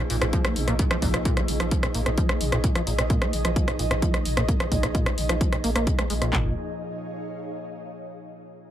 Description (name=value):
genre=driving peak-time techno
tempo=130 BPM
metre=4/4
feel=straight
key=Bb minor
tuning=A4 = 439 Hz
part: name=acid bass, saw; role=riff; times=0.0-6.5 s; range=Ab2 to Bb3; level=-29 LUFS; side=equal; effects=analog chorus, cassette tape, sidechain pumping, dub echo
part: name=warm sub bass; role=bass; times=0.0-6.5 s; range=Bb1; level=-29 LUFS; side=equal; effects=overdrive, sidechain pumping, low-pass filter
part: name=metallic inharmonic drone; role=drone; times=0.0-6.4 s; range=Bb2 to F3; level=-37 LUFS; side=left 2 dB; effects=chorus, built-in reverb, sidechain pumping
part: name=ethereal airy pad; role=texture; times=0.0-8.1 s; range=Eb4 to F5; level=-32 LUFS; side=right 2 dB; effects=ensemble chorus, built-in reverb, sidechain pumping
part: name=punchy analog drum machine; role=drums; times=0.1-6.3 s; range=hi-hat, rim click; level=-28 LUFS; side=equal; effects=sidechain pumping on hats
part: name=techno drum kit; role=drums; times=0.3-6.4 s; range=handclaps, kick drum, toms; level=-24 LUFS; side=equal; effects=overdrive
room=digital ambience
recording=none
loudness=-22 LUFS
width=side -11 dB against mid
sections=0.0-6.3 A section; 6.3-8.2 B section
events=filter sweep on acid bass 0.0-6.3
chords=0.0 Bb5; 6.3 Bbm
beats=0.33 | 0.79 1.25 1.72 2.18 | 2.64 3.10 3.56 4.02 | 4.49 4.95 5.41 5.87 | 6.33 6.79 7.25 7.71